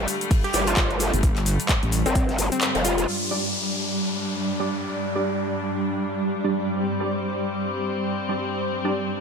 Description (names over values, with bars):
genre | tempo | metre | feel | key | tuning
bass house | 130 BPM | 4/4 | swing 58% on 16ths | unclear | A4 = 440 Hz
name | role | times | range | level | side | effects
warm studio string section | sustained chords | 0.0-9.2 s | G2 to D4 | -30 LUFS | left 2 dB | sidechain pumping, low-pass filter
growl bass | bass | 0.0-3.1 s | F1 to G1 | -24 LUFS | equal | chorus, overdrive, sidechain pumping
granular cloud pad | texture | 0.0-9.2 s | G3 to D6 | -28 LUFS | right 1 dB | built-in reverb, sidechain pumping
damped 70s drum kit | drums | 0.1-3.1 s | hi-hat, shaker, snare drum | -37 LUFS | left 1 dB | none
garage drum kit | drums | 0.1-3.1 s | handclaps, hi-hat, shaker | -27 LUFS | left 1 dB | studio reverb
electronic kick drum | drums | 0.3-2.3 s | none | -21 LUFS | equal | studio reverb
glassy wavetable pluck | melody | 0.4-3.0 s | C4 to G4 | -28 LUFS | left 1 dB | chorus, phaser, digital delay
wobble bass | bass | 1.1-2.0 s | G1 to A1 | -22 LUFS | equal | chorus, overdrive, sidechain pumping
downlifter | sound effects | 3.1-6.8 s | none | -31 LUFS | left 2 dB | none
orchestra-hit-like synth stab | stabs | 3.3-9.1 s | G3 to D5 | -29 LUFS | right 3 dB | built-in reverb, sidechain pumping, digital delay
room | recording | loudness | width
moderate lush hall reverb, RT60 1.7 s, small room ambience | none | -22 LUFS | side -6 dB against mid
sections
0.0-3.1 A section; 3.1-9.2 B section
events
drop 0.0-3.1; kick drops out 2.6-3.1; band accent 2.6; filter sweep on string section 3.1-9.2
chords
0.0 G5